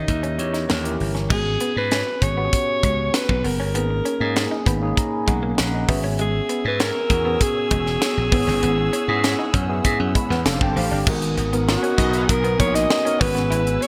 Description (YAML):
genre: polished 1980s jazz-funk pop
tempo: 98 BPM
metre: 4/4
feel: straight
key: unclear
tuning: A4 = 440 Hz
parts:
  - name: breathy alto saxophone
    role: melody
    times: 0.0-13.9 s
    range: D#4 to D#5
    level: -26 LUFS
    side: equal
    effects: none
  - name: mellow tine electric piano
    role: accompaniment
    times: 0.0-13.9 s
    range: E3 to B5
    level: -28 LUFS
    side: equal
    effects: lush chorus
  - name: slap bass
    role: bass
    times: 0.0-13.8 s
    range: E1 to G#2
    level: -26 LUFS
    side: equal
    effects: none
  - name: crisp fusion drum kit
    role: drums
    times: 0.1-13.9 s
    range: crash cymbal, hi-hat, kick drum, snare drum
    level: -26 LUFS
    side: equal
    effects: gated reverb
  - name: electric guitar through a small old amp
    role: riff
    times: 0.2-13.8 s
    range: G#3 to E4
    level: -33 LUFS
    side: equal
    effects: subtle chorus
  - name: muted studio string section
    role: sustained chords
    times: 6.2-13.9 s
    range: B3 to E6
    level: -35 LUFS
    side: equal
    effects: none
  - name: clear horn section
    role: second line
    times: 12.0-12.2 s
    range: B3 to D#5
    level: -32 LUFS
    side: equal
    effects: delay
room: light reverb, studio ambience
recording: bright 1980s-style digital production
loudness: -21 LUFS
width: mono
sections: 0.0-1.3 A section; 1.3-11.1 B section; 11.1-13.9 C section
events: tine electric piano fill 4.4-6.2, 9.8-11.1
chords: 0.0 D#7b9; 1.3 F#sus24; 3.7 Bmaj13/G#; 5.9 E6/G#; 8.3 F#7sus4; 10.5 F6; 11.1 G#m7; 13.2 E69/G#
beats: 0.09 0.70 | 1.31 1.92 2.53 3.14 | 3.75 4.36 4.97 5.58 | 6.19 6.80 7.41 8.02 | 8.63 9.24 9.85 10.46 | 11.07 11.68 12.29 12.90 | 13.51